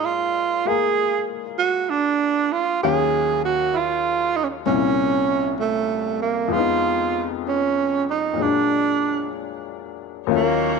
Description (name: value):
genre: jazz ballad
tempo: 65 BPM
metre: 4/4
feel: swing 67% on 8ths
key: Eb minor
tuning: A4 = 437 Hz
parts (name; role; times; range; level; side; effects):
- breathy tenor saxophone; melody; 0.0-10.8 s; A3 to Ab4; -20 LUFS; right 7 dB; slapback echo
- clear upright piano; accompaniment; 0.0-10.8 s; C2 to F5; -25 LUFS; left 14 dB; none
- warm studio string section; sustained chords; 10.3-10.8 s; Eb4 to Db5; -27 LUFS; left 5 dB; none
room: light reverb, small room ambience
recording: 1960s-style stereo with parts hard left and right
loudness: -19 LUFS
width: side -5 dB against mid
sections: 0.0-10.3 A section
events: none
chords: 0.0 Bb7; 2.8 Ebm9; 4.7 C7b9; 6.5 Fm7b5; 8.4 Bb7alt; 10.3 Ebm9